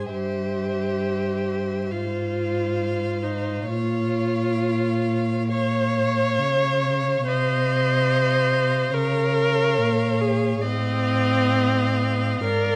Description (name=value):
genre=classical, slow romantic movement for string quartet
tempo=60-73 BPM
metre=4/4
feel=rubato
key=unclear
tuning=A4 = 435 Hz
part: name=rich violin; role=melody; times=0.0-12.8 s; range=E5 to F5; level=-36 LUFS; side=equal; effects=none
part: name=warm violin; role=second line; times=0.0-12.8 s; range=C5 to Eb5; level=-32 LUFS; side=equal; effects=none
part: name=dark viola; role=accompaniment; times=0.0-12.8 s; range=C4 to Db5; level=-26 LUFS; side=equal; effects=none
part: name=warm cello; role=bass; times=0.0-12.8 s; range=G2 to Db3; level=-27 LUFS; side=equal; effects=none
room=moderate recital hall reverb, RT60 1.5 s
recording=vinyl crackle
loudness=-23 LUFS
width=mono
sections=0.0-12.8 A section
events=none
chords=0.1 C/G; 1.9 Fm/Ab; 3.7 Bbm; 7.3 F5/C; 8.9 Bbm/Db; 10.6 F7/A